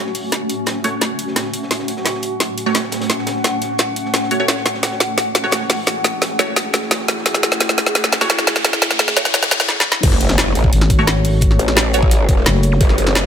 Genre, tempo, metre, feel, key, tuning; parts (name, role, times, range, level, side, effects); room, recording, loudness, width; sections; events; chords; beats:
dark technical drum and bass; 173 BPM; 4/4; straight; F# minor; A4 = 444 Hz
dark analog pad; sustained chords; 1.0-13.3 s; A3 to C#5; -26 LUFS; equal; chorus, sidechain pumping
filtered dub chord stab; stabs; 0.0-12.0 s; A3 to C#5; -24 LUFS; right 2 dB; phaser, dub echo
granular cloud pad; texture; 0.0-9.7 s; A3 to F#5; -24 LUFS; left 1 dB; built-in reverb, sidechain pumping
crunchy breakbeat drum kit; drums; 0.1-13.2 s; hi-hat, snare drum; -30 LUFS; equal
drum and bass drum kit; drums; 0.1-13.2 s; crash cymbal, hi-hat, snare drum; -17 LUFS; equal; overdrive
riser, impact and zap; sound effects; 6.7-12.8 s; -24 LUFS; left 1 dB
growl bass; bass; 10.0-13.3 s; F#1 to A1; -17 LUFS; equal; chorus, sidechain pumping
electronic kick drum; drums; 10.0-12.9 s; -15 LUFS; equal; overdrive
growling FM bass; bass; 10.7-12.8 s; F#1 to G#1; -15 LUFS; equal
light reverb, digital ambience; high-pass filter; -14 LUFS; side -8 dB against mid
0.0-10.0 A section; 10.0-13.3 B section
build-up 0.0-10.0; drum fill 0.0-9.7, 9.7-10.0; filter sweep on analog synth pad 0.0-10.0; riser 6.7-9.7; drop 10.0-13.3; impact 10.0-11.4
0.0 F#m
| 0.32 0.67 1.02 1.36 | 1.71 2.06 2.40 2.75 | 3.10 3.44 3.79 4.14 | 4.48 4.83 5.18 5.52 | 5.87 6.22 6.57 6.91 | 7.26 7.61 7.95 8.30 | 8.65 8.99 9.34 9.69 | 10.03 10.38 10.73 11.07 | 11.42 11.77 12.11 12.46 | 12.81 13.15